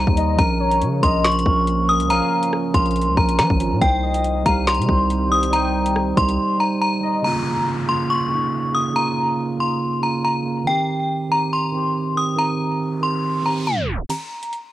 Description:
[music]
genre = hip hop, drill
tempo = 140 BPM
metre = 4/4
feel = half-time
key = C phrygian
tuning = A4 = 440 Hz
[part]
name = metallic FM bell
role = melody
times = 0.0-14.5 s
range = G5 to Eb6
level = -20 LUFS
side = left 1 dB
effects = chorus, low-pass filter, cassette tape, tape echo
[part]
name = mellow tine electric piano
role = accompaniment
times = 0.0-14.1 s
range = Db3 to Eb5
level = -23 LUFS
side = right 4 dB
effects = cassette tape
[part]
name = deep dark ambient pad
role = sustained chords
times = 0.0-7.2 s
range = C3 to G4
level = -32 LUFS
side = left 1 dB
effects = chorus, built-in reverb, cassette tape
[part]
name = hard-hitting 808-style bass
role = bass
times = 0.0-6.4 s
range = Ab1 to F3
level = -22 LUFS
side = left 1 dB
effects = none
[part]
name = drill drum kit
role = drums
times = 0.1-6.4, 14.1-14.6 s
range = crash cymbal, finger snaps, hi-hat, kick drum, rim click, snare drum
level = -22 LUFS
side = left 1 dB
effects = vintage 12-bit sampler grit, cassette tape
[part]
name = warm velvety synth lead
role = second line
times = 0.2-7.2 s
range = Db5 to G5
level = -29 LUFS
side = left 8 dB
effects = chorus, cassette tape, tape echo
[part]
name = downlifter and riser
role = sound effects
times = 7.2-14.1 s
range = none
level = -32 LUFS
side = left 1 dB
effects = none
[sound]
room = light reverb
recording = home recording on cassette, tape stop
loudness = -17 LUFS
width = side -14 dB against mid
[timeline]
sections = 0.0-7.2 A section; 7.2-14.1 B section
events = drums muted 6.4-7.2; riser 12.8-14.1; tape stop 13.7-14.1; break 14.1-14.7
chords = 0.4 Bbm; 3.8 Cm; 7.2 Bbm; 10.7 Cm; 14.1 N.C.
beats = | 0.39 0.81 1.24 1.67 | 2.10 2.53 2.96 3.39 | 3.81 4.24 4.67 5.10 | 5.53 5.96 6.39 6.82 | 7.24 7.67 8.10 8.53 | 8.96 9.39 9.81 10.24 | 10.67 11.10 11.53 11.96 | 12.39 12.81 13.24 13.67 | 14.10 14.53

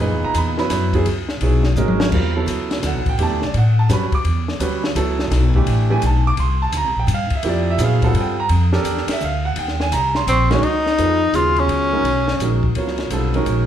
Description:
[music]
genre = modal jazz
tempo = 169 BPM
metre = 3/4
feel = swing 65% on 8ths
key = G# minor from 10.6 s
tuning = A4 = 440 Hz
[part]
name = warm baby grand piano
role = accompaniment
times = 0.0-13.7 s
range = A#2 to D6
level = -21 LUFS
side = right 4 dB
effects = none
[part]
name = upright bass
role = bass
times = 0.0-13.7 s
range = G#1 to Bb2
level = -19 LUFS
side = left 1 dB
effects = none
[part]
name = compact cocktail drum kit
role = drums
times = 0.3-13.6 s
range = crash cymbal, hi-hat, kick drum, ride cymbal, snare drum, toms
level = -25 LUFS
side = left 2 dB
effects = none
[part]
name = breathy tenor saxophone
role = melody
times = 10.3-12.6 s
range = C4 to E#4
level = -17 LUFS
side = left 1 dB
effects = none
[sound]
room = moderate large studio reverb, RT60 0.9 s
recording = band playing live in one room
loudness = -16 LUFS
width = side -10 dB against mid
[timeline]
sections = 0.0-2.1 A section; 2.1-10.6 A section; 10.6-13.7 B section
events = drum fill 1.8-2.1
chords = 0.0 F#13sus4; 2.1 E9sus4; 6.4 C9sus4; 9.6 D#5; 10.6 G#13sus4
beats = 0.35 0.70 | 1.06 1.41 1.77 | 2.12 2.48 2.83 | 3.19 3.54 3.90 | 4.25 4.60 4.96 | 5.31 5.67 6.02 | 6.38 6.73 7.08 | 7.44 7.79 8.15 | 8.50 8.86 9.21 | 9.56 9.92 10.27 | 10.63 10.98 11.34 | 11.69 12.05 12.40 | 12.76 13.11 13.47

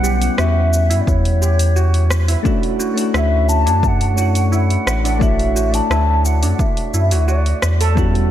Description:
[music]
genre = sunset chillout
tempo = 87 BPM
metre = 4/4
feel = straight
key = unclear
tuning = A4 = 441 Hz
[part]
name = mellow hollow wooden flute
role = melody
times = 0.0-7.8 s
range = C#5 to A5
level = -22 LUFS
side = left 2 dB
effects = ping-pong delay, slapback echo
[part]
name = soft electric-piano-like synth keys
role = accompaniment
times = 0.0-8.3 s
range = G3 to G5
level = -22 LUFS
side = left 1 dB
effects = chorus, auto-pan, slapback echo
[part]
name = steel pan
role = arpeggios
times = 0.0-8.0 s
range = D4 to A4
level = -26 LUFS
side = right 4 dB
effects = ping-pong delay, slapback echo
[part]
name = warm sub bass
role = bass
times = 0.0-8.3 s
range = A1 to G2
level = -16 LUFS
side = equal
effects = none
[part]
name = deep house drum kit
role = drums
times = 0.0-8.3 s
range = hi-hat, rim click, shaker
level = -25 LUFS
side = equal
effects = overdrive
[part]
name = electronic kick drum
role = drums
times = 1.1-8.1 s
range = none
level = -19 LUFS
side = equal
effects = overdrive
[sound]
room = light reverb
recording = none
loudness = -14 LUFS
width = side -11 dB against mid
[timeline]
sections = 0.0-8.3 A section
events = none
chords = 0.0 Em69; 2.5 Dmaj9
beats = 0.39 1.07 1.76 | 2.45 3.14 3.83 4.52 | 5.21 5.90 6.59 7.28 | 7.97

